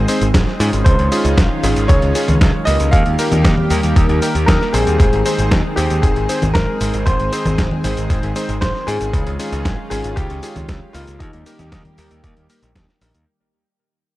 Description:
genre	italo disco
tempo	116 BPM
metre	4/4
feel	straight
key	Ab major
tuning	A4 = 440 Hz
part	lush unison pad	sustained chords	0.0-13.3 s	Eb3 to Ab4	-23 LUFS	equal	chorus
part	bright electric grand piano	stabs	0.0-13.3 s	Bb3 to C5	-24 LUFS	left 1 dB	none
part	modern bright picked electric bass	bass	0.0-13.2 s	Ab1 to Ab2	-19 LUFS	equal	tube saturation
part	dusty soul sampler-style drum kit	drums	0.1-13.2 s	cabasa, congas, hi-hat, snare drum	-21 LUFS	equal	overdrive
part	electronic kick drum	drums	0.3-12.9 s	none	-16 LUFS	equal	overdrive
part	bright baby grand piano	melody	0.8-12.7 s	Eb4 to F5	-22 LUFS	left 1 dB	tape echo
room	little or no reverb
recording	dry, gritty hardware recording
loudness	-14 LUFS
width	side -17 dB against mid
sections	0.0-13.3 A section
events	fade-out 5.0-13.3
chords	0.0 Ab; 0.9 Dbadd9; 2.9 Eb; 5.0 Ab; 9.1 Dbadd9; 11.2 Eb

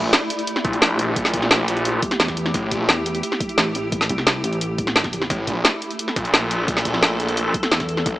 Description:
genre	dark technical drum and bass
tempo	174 BPM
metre	4/4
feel	straight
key	unclear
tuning	A4 = 440 Hz
part	swarming drone	sustained chords	0.0-8.2 s	A3 to A4	-26 LUFS	equal	built-in reverb, sidechain pumping
part	snarling distorted saw bass	bass	0.0-2.9, 5.3-8.2 s	A1 to Bb1	-22 LUFS	equal	distortion, tube saturation, sidechain pumping
part	drum and bass drum kit	drums	0.1-8.1 s	hi-hat, snare drum	-19 LUFS	equal	overdrive
part	electronic kick drum	drums	0.6-8.1 s	none	-28 LUFS	equal	overdrive
part	pulsing pluck wobble bass	bass	2.2-5.3, 7.7-8.0 s	A1 to E2	-26 LUFS	equal	distortion, chorus, tube saturation
room	light reverb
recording	small speaker sound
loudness	-18 LUFS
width	side -16 dB against mid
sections	0.0-8.2 A section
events	none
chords	0.0 A5

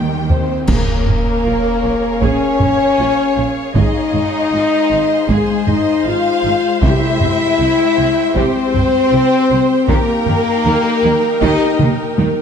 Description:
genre	cinematic, epic orchestral film score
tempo	78 BPM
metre	4/4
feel	straight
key	unclear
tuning	A4 = 440 Hz
part	warm symphonic violin section	melody	0.0-11.8 s	Ab4 to G5	-26 LUFS	left 3 dB	none
part	warm symphonic violin section	second line	0.0-11.8 s	G4 to G5	-22 LUFS	equal	none
part	rich symphonic viola section	accompaniment	0.0-12.4 s	Bb3 to Db5	-24 LUFS	right 2 dB	none
part	clear French horn section	sustained chords	0.0-11.8 s	G3 to F4	-16 LUFS	left 3 dB	none
part	warm symphonic string section	sustained chords	0.0-12.4 s	Ab3 to C6	-26 LUFS	left 1 dB	none
part	rich symphonic double bass section	bass	0.0-12.3 s	Ab1 to Eb2	-24 LUFS	right 4 dB	none
part	warm symphonic cello section	bass	0.0-12.3 s	Ab2 to Eb3	-24 LUFS	right 4 dB	none
part	taiko ensemble	drums	0.3-12.4 s	none	-19 LUFS	equal	none
part	clash cymbals and concert bass drum	percussion	0.7-2.2 s	none	-22 LUFS	right 1 dB	none
part	timpani	percussion	6.8-7.9 s	C3	-22 LUFS	equal	none
room	wet scoring stage reverb, RT60 1.5 s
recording	dark, warm production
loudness	-12 LUFS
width	side -7 dB against mid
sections	0.7-12.4 A section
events	drum fill 0.0-0.7, 11.8-12.4; band accent 0.7-1.5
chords	0.0 Eb; 0.7 Bbm7; 3.8 Fm7/Ab; 6.8 C; 9.9 Eb

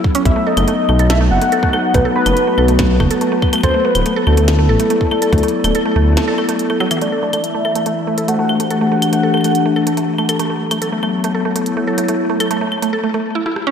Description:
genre	IDM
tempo	142 BPM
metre	4/4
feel	straight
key	A dorian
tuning	A4 = 440 Hz
part	warbly tape-like pad	sustained chords	0.0-12.9 s	E3 to D5	-18 LUFS	left 2 dB	chorus, built-in reverb
part	electronic kick drum	drums	0.0-5.4 s	none	-18 LUFS	equal	none
part	mallet-like synth pluck	arpeggios	0.1-13.7 s	E3 to A4	-20 LUFS	right 2 dB	chorus, phaser, ping-pong delay
part	glitchy drum kit	drums	0.1-13.6 s	claves, hi-hat, rim click, snare drum	-23 LUFS	left 1 dB	diffuse ambient delay
part	warm velvety synth lead	melody	0.3-10.1 s	A4 to F#5	-19 LUFS	equal	chorus, tremolo, analog delay
part	dark detuned saw bass	bass	0.3-6.2 s	D1 to D2	-15 LUFS	equal	none
room	wet lush hall reverb, RT60 1.7 s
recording	dreamy mix soaked in reverb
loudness	-13 LUFS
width	side -7 dB against mid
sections	0.0-7.0 A section; 7.0-13.7 B section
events	break 6.2-7.0; filter sweep on ambient pad 7.0-13.7; filter sweep on synth arpeggio sound 7.0-13.7; drum fill 13.5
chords	0.3 B; 3.6 D; 7.0 Am; 10.4 F#m

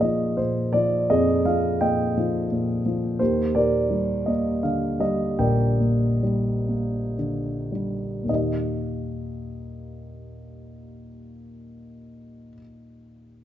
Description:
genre	classical, lyrical solo piano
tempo	52-87 BPM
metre	3/4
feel	rubato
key	Eb major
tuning	A4 = 440 Hz
part	dark grand piano	solo	0.0-13.4 s	Bb1 to G5	-22 LUFS	equal	none
room	moderate recital hall reverb, RT60 1.5 s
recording	nothing above 7.7 kHz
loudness	-21 LUFS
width	side -11 dB against mid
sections	0.0-8.3 A section; 8.3-13.4 B section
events	slowing down 3.2-8.3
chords	0.0 Bb7sus4; 3.2 Ebmaj7; 8.3 Eb

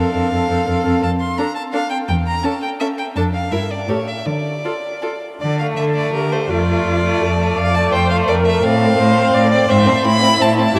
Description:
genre	quick classical-period movement for string quartet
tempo	169 BPM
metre	3/4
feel	rubato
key	D minor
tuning	A4 = 443 Hz
part	rich violin	melody	0.0-10.8 s	Bb4 to C6	-24 LUFS	equal	none
part	rich violin	second line	0.0-10.8 s	A3 to Bb4	-24 LUFS	equal	none
part	rich viola	accompaniment	0.0-10.8 s	C4 to D5	-23 LUFS	equal	none
part	rich cello	bass	0.0-10.8 s	E2 to D3	-21 LUFS	equal	none
room	wet cathedral reverb, RT60 6.8 s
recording	in a vast, echoing space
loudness	-17 LUFS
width	mono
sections	0.0-5.4 A section; 5.4-10.8 B section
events	none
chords	0.0 F; 1.0 Dm/F; 2.1 A/E; 3.2 Dm/F; 3.5 Edim/G; 3.9 A; 4.3 Dm; 5.4 D5; 6.5 Dm/F; 8.6 F/A

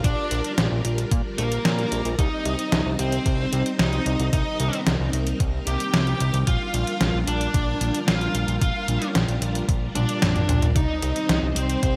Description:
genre	synthwave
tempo	112 BPM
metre	4/4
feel	straight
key	G minor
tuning	A4 = 441 Hz
part	dark smooth lead guitar	melody	0.0-12.0 s	Bb3 to G4	-31 LUFS	equal	overdrive, delay
part	string machine, violins	second line	0.0-12.0 s	Bb4 to G5	-36 LUFS	equal	ensemble chorus
part	string machine, full ensemble	sustained chords	0.0-12.0 s	G3 to C5	-32 LUFS	equal	ensemble chorus, sidechain pumping
part	fat analog bass	bass	0.0-12.0 s	Bb1 to Bb2	-28 LUFS	equal	tube saturation
part	detuned 8-bit digital drum machine	drums	0.0-11.9 s	hi-hat, snare drum, toms	-27 LUFS	equal	overdrive, gated reverb
part	electronic kick drum	drums	0.0-11.9 s	none	-26 LUFS	equal	overdrive
room	light reverb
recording	bright 1980s-style digital production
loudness	-23 LUFS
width	mono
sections	0.0-12.0 A section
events	drum fill 10.0-10.8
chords	0.0 Gm7/Bb; 2.2 Cm; 6.5 Gm7/Bb; 10.8 Cm

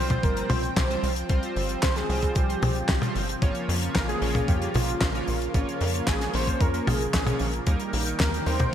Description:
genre	italo disco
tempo	113 BPM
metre	4/4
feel	straight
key	unclear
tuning	A4 = 443 Hz
part	wide unison lead	melody	0.0-8.7 s	F4 to C5	-32 LUFS	equal	ping-pong delay, shimmer reverb
part	lush unison pad	sustained chords	0.0-8.7 s	Db3 to G5	-32 LUFS	equal	chorus, phaser, shimmer reverb
part	chorused polysynth	stabs	0.0-8.7 s	G3 to Db5	-33 LUFS	right 2 dB	cassette tape, shimmer reverb
part	tight sequencer bass	bass	0.0-8.7 s	G1 to F2	-29 LUFS	equal	none
part	damped 70s drum kit	drums	0.1-8.7 s	handclaps, hi-hat, snare drum, toms	-28 LUFS	left 1 dB	studio ambience, gated reverb
part	electronic kick drum	drums	0.1-8.7 s	none	-26 LUFS	equal	studio ambience
room	light reverb, studio reverb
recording	bright 1980s-style digital production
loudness	-23 LUFS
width	side -10 dB against mid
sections	0.0-8.7 A section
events	none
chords	0.0 Csus4; 3.4 Bbm; 7.7 Eb

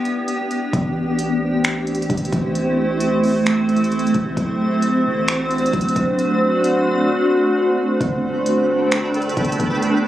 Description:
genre	hip hop, atmospheric cloud-rap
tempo	132 BPM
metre	4/4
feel	half-time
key	unclear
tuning	A4 = 435 Hz
part	granular cloud pad	sustained chords	0.0-10.1 s	A3 to C5	-18 LUFS	equal	built-in reverb, sidechain pumping
part	smooth R&B drum kit	drums	0.1-9.9 s	finger snaps, hi-hat, kick drum	-24 LUFS	equal	none
part	long sustained 808-style bass	bass	0.7-10.1 s	D1 to A1	-25 LUFS	equal	none
part	twinkling granular texture	texture	8.4-10.1 s	A4 to B5	-26 LUFS	right 1 dB	built-in reverb
room	moderate lush hall reverb, RT60 1.9 s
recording	recorded on a phone in the room, club reverb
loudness	-16 LUFS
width	side -13 dB against mid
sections	0.0-10.1 A section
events	break 0.0-0.7; drums muted 7.1-8.0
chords	0.0 Em (rootless); 0.7 Am7; 4.4 D7; 8.0 Gadd9

